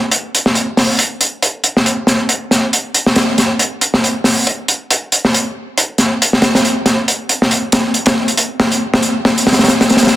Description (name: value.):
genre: breakbeat.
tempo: 138 BPM.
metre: 4/4.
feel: swing 57% on 16ths.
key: none.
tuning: none.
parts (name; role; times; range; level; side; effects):
crunchy breakbeat drum kit; drums; 0.1-10.1 s; hi-hat, snare drum; -11 LUFS; equal; none.
room: moderate plate reverb, RT60 1.7 s.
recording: dense, heavily limited modern master.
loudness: -11 LUFS.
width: side -15 dB against mid.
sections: 0.0-10.2 A section.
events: none.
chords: none.